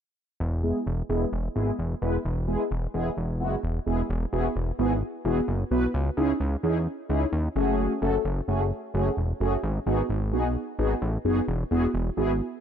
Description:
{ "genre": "synth-pop", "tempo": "130 BPM", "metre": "4/4", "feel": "straight", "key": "E major", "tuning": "A4 = 440 Hz", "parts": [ { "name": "fat analog bass", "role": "bass", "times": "0.4-12.4 s", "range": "E1 to E2", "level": "-27 LUFS", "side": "equal", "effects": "none" }, { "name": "mellow synth brass", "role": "accompaniment", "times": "0.6-12.3 s", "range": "G#3 to B4", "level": "-27 LUFS", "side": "equal", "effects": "chorus, phaser, low-pass filter" } ], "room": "light reverb, digital ambience", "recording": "none", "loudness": "-24 LUFS", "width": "side -8 dB against mid", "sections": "0.4-4.1 A section; 4.1-12.6 B section", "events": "filter sweep on analog polysynth 0.4-4.1", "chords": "0.4 Eadd9; 5.9 C#madd9; 7.6 F#madd9; 9.6 G#m7; 11.5 Eadd9" }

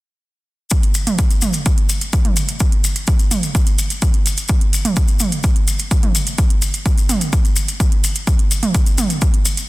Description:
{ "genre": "techno", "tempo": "127 BPM", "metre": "4/4", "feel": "straight", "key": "none", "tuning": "none", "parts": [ { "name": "electronic kick drum", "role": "drums", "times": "0.7-9.3 s", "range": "none", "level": "-15 LUFS", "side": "equal", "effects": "overdrive" }, { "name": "house drum kit", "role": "drums", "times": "0.7-9.7 s", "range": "hi-hat, toms", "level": "-21 LUFS", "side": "right 3 dB", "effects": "none" }, { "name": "maracas", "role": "percussion", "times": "0.7-9.7 s", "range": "none", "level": "-24 LUFS", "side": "left 4 dB", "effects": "none" } ], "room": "digital ambience", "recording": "dense, heavily limited modern master", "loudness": "-14 LUFS", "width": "side -19 dB against mid", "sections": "0.7-9.7 A section", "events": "none", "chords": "none" }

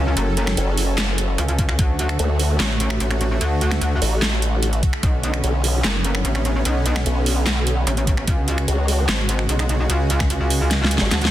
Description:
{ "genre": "heavy wobble dubstep", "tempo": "148 BPM", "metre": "4/4", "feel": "half-time", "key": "unclear", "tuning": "A4 = 439 Hz", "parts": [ { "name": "supersaw pad", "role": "sustained chords", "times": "0.0-11.3 s", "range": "C#3 to A4", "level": "-26 LUFS", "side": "right 1 dB", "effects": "sidechain pumping" }, { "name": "metallic wobble bass", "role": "bass", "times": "0.0-11.3 s", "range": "F#1 to D2", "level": "-20 LUFS", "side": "equal", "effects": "chorus, overdrive" }, { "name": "dubstep drum kit", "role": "drums", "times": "0.2-11.3 s", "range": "finger snaps, handclaps, hi-hat, snare drum", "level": "-24 LUFS", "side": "right 1 dB", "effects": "studio reverb" }, { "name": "formant-sweep wobble bass", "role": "bass", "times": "0.6-11.1 s", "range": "F#1 to D2", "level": "-19 LUFS", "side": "equal", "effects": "chorus, overdrive" }, { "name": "electronic kick drum", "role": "drums", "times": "1.6-1.9, 4.8-5.1, 8.1-10.3 s", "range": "none", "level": "-20 LUFS", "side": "equal", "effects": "studio reverb" } ], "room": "digital ambience", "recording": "dense, heavily limited modern master", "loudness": "-17 LUFS", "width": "side -13 dB against mid", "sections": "0.0-11.3 A section", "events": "drum fill 10.7-11.3", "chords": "0.0 F#m; 1.8 D; 5.0 Bmadd9; 8.3 C#sus4" }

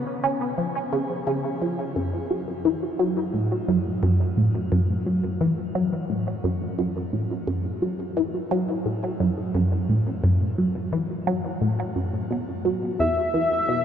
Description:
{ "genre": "ambient", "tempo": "87 BPM", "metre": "4/4", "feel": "straight", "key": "F# minor", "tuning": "A4 = 440 Hz", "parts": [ { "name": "resonant blip pluck", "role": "riff", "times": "0.2-13.8 s", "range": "E2 to C#4", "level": "-22 LUFS", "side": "equal", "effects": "phaser, shimmer reverb, tape echo" }, { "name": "pulse-width lead", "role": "melody", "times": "13.0-13.8 s", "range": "E5", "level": "-21 LUFS", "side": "left 1 dB", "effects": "chorus, shimmer reverb" } ], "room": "wet huge ambient reverb, RT60 7.3 s", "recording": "dark, warm production", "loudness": "-22 LUFS", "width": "side -8 dB against mid", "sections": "0.0-2.0 A section; 2.0-13.8 B section", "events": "none", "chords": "0.0 C#; 2.0 F#m; 13.0 E5" }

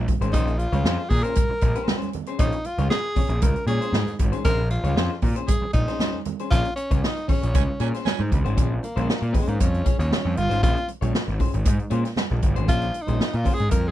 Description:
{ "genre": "funk", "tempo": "116 BPM", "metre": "4/4", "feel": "straight", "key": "Bb minor", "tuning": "A4 = 440 Hz", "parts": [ { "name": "clear tenor saxophone", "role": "melody", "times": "0.0-13.9 s", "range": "Ab3 to Bb4", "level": "-28 LUFS", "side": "equal", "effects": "none" }, { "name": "fuzz picked electric bass", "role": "bass", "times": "0.0-13.9 s", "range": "G1 to Bb2", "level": "-24 LUFS", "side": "equal", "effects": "overdrive" }, { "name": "swinging big-band drum kit", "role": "drums", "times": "0.1-13.8 s", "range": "hi-hat, kick drum, snare drum", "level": "-23 LUFS", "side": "equal", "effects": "none" }, { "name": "congas", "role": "percussion", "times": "0.1-13.8 s", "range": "none", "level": "-33 LUFS", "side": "right 9 dB", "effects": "none" }, { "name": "electric guitar at the edge of break-up", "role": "accompaniment", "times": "0.2-13.7 s", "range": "Db4 to Db5", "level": "-32 LUFS", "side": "left 8 dB", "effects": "none" }, { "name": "growling baritone saxophone", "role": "second line", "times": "7.5-8.2 s", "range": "Db4", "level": "-30 LUFS", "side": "right 18 dB", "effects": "none" } ], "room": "little or no reverb", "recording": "none", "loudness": "-20 LUFS", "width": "side -13 dB against mid", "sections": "0.0-8.6 A section; 8.6-13.9 B section", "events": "band accent 6.5-8.6; tenor saxophone solo 8.6-13.9", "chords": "0.0 Bbm9" }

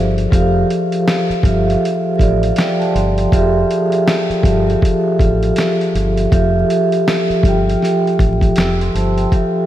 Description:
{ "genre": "lo-fi hip hop", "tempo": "80 BPM", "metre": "4/4", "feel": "swing 60% on 16ths", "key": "F major", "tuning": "A4 = 440 Hz", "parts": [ { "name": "vibraphone with soft mallets", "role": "accompaniment", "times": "0.0-9.7 s", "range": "F3 to E6", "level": "-15 LUFS", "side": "equal", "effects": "cassette tape, low-pass filter" }, { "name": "deep dub fingered electric bass", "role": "bass", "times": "0.0-9.3 s", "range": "F1 to A1", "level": "-18 LUFS", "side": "equal", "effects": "none" }, { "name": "dusty soul sampler-style drum kit", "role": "drums", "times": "0.2-9.5 s", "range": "hi-hat, kick drum, snare drum", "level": "-17 LUFS", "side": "equal", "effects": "overdrive, vintage 12-bit sampler grit" } ], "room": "moderate lush hall reverb, RT60 2.5 s", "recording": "dreamy mix soaked in reverb, vinyl crackle", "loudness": "-12 LUFS", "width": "side -12 dB against mid", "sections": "0.0-9.3 A section", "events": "vibraphone fill 1.8-3.3", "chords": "0.0 Fmaj9" }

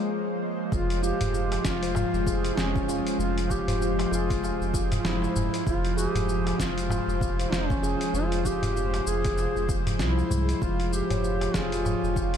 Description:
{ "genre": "organic downtempo", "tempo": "97 BPM", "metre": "4/4", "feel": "swing 58% on 16ths", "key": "F harmonic minor", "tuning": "A4 = 441 Hz", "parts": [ { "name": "mellow duduk", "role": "melody", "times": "0.0-12.4 s", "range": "Db4 to Ab4", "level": "-30 LUFS", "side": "left 1 dB", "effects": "tape echo, shimmer reverb" }, { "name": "bowed-like drone", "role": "sustained chords", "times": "0.0-12.4 s", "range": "F3 to C5", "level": "-33 LUFS", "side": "equal", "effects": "built-in reverb, sidechain pumping, shimmer reverb" }, { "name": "handpan", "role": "arpeggios", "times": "0.7-12.3 s", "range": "F3 to Db5", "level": "-31 LUFS", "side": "equal", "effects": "ping-pong delay, shimmer reverb" }, { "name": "warm sub bass", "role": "bass", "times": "0.7-12.4 s", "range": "F1 to C2", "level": "-30 LUFS", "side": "equal", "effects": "sidechain pumping" }, { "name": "dusty soul sampler-style drum kit", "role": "drums", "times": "0.7-12.4 s", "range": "cabasa, hi-hat, snare drum", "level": "-34 LUFS", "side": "equal", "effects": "none" }, { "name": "electronic kick drum", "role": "drums", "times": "0.7-12.3 s", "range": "none", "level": "-31 LUFS", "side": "equal", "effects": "overdrive" }, { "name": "darbuka", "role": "percussion", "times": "1.2-12.4 s", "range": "none", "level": "-34 LUFS", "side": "equal", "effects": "none" } ], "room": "moderate huge ambient reverb, RT60 8.5 s", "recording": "dreamy mix soaked in reverb", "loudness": "-24 LUFS", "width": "side -8 dB against mid", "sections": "0.7-12.4 A section", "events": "break 0.1-0.7", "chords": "0.0 Db/F (rootless); 10.6 Db/F" }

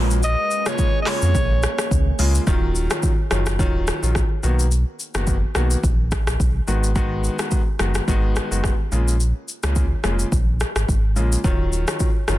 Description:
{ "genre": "afrobeats", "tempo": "107 BPM", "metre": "4/4", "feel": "swing 55% on 16ths", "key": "Eb minor", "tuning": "A4 = 439 Hz", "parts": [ { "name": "bright baby grand piano", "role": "accompaniment", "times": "0.0-12.4 s", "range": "Db3 to F#4", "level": "-26 LUFS", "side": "left 1 dB", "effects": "none" }, { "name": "deep dark ambient pad", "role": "sustained chords", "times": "0.0-2.4 s", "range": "Bb3 to Ab4", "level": "-32 LUFS", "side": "right 2 dB", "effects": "chorus, built-in reverb" }, { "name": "sub bass with octave", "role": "bass", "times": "0.0-12.4 s", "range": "Eb1 to F2", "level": "-20 LUFS", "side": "equal", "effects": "none" }, { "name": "afro-pop drum kit", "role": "drums", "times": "0.1-12.4 s", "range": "handclaps, hi-hat, kick drum, rim click, shaker", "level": "-21 LUFS", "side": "equal", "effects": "none" }, { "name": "breathy alto saxophone", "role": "melody", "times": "0.2-1.9 s", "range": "Db5 to Eb5", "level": "-24 LUFS", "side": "equal", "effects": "digital delay" } ], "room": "digital ambience", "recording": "dense, heavily limited modern master", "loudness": "-18 LUFS", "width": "side -15 dB against mid", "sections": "0.0-2.5 A section; 2.5-12.4 B section", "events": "none", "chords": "0.0 Bbm7; 2.5 Ebm9; 4.4 Bmaj7; 6.7 Abm7; 8.9 Bbm7; 11.4 Ebm9" }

